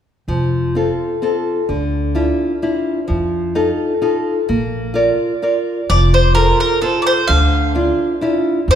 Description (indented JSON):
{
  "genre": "italian folk, Italian serenade",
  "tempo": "129 BPM",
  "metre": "3/4",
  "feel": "swing 53% on 8ths",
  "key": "F major",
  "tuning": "A4 = 436 Hz",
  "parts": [
    { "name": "nylon-string guitar", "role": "accompaniment", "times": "0.3-8.8 s", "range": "D3 to D5", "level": "-17 LUFS", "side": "equal", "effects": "none" },
    { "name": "upright bass", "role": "bass", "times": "0.3-8.8 s", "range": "F1 to F2", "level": "-18 LUFS", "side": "equal", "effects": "none" },
    { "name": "bowl-back mandolin", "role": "melody", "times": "5.9-8.8 s", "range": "A4 to F5", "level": "-15 LUFS", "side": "equal", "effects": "none" }
  ],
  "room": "moderate scoring stage reverb, RT60 2.2 s",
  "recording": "recorded in a church or concert hall",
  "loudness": "-14 LUFS",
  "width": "side -9 dB against mid",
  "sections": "0.3-5.9 A section; 5.9-8.8 B section",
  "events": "none",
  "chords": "0.3 F; 1.7 Dmadd9; 3.1 F7; 4.5 Bb; 5.9 F; 7.3 Dmadd9",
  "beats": "| 0.29 0.76 1.22 | 1.69 2.16 2.62 | 3.08 3.55 4.02 | 4.48 4.95 5.42 | 5.89 6.36 6.83 | 7.29 7.76 8.22 | 8.68"
}